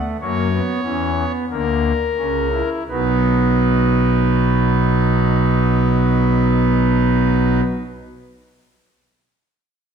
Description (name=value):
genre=classical, baroque-style 3-part fugue for pipe organ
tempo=42-49 BPM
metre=4/4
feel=straight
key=unclear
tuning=A4 = 440 Hz
part: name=pipe organ, foundations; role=solo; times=0.0-7.6 s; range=B1 to C#5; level=-15 LUFS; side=right 1 dB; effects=none
room=wet recital hall reverb, RT60 1.5 s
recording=none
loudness=-15 LUFS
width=side -7 dB against mid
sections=0.0-2.9 A section; 2.9-8.6 B section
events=slowing down 0.0-2.9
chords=0.2 F#7; 2.9 B